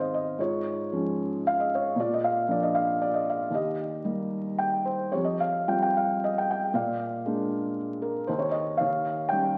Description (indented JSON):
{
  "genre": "classical, lyrical solo piano",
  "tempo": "114 BPM",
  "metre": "3/4",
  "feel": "rubato",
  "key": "unclear",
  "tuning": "A4 = 440 Hz",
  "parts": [
    { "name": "felt-muted upright piano", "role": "solo", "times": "0.0-9.6 s", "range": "Eb2 to G5", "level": "-28 LUFS", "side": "equal", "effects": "none" }
  ],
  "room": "moderate scoring stage reverb, RT60 2.1 s",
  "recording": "very old 78 rpm record, vinyl crackle",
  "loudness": "-28 LUFS",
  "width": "mono",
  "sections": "0.0-9.6 A section",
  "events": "none",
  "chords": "0.4 Db/Ab; 2.0 Bb; 3.5 Eb; 5.1 Fsus2; 6.7 Bb7; 8.3 N.C.; 8.8 Eb7",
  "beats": "| 0.40 0.93 1.45 | 1.97 2.49 3.00 | 3.52 4.05 4.58 | 5.13 5.68 6.22 | 6.74 7.26 7.78 | 8.29 8.81 9.34"
}